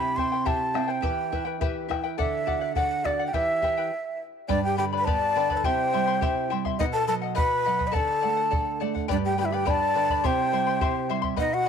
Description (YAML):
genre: andean folk, Andean ensemble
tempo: 104 BPM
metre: 2/4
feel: straight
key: unclear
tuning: A4 = 438 Hz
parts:
  - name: breathy large quena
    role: melody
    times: 0.0-11.7 s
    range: D5 to C6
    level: -26 LUFS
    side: right 2 dB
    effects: none
  - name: charango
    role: accompaniment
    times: 0.0-11.7 s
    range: E4 to C6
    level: -31 LUFS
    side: left 13 dB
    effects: none
  - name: nylon-string guitar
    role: accompaniment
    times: 0.0-11.7 s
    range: G2 to B4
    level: -31 LUFS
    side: right 10 dB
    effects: none
  - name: bombo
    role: percussion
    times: 0.2-11.5 s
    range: none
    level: -30 LUFS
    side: right 1 dB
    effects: none
  - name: breathy large quena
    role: second line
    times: 4.5-11.7 s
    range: D4 to D#5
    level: -30 LUFS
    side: left 13 dB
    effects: none
room: light reverb, small room ambience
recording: 1960s-style stereo with parts hard left and right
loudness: -23 LUFS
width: side -7 dB against mid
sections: 0.0-4.5 A section; 4.5-11.7 B section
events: stop 3.9-4.5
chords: 0.0 C; 1.0 Em; 2.2 D; 3.3 Em; 4.5 G; 5.6 C; 6.8 B; 7.9 D; 9.1 G; 10.2 C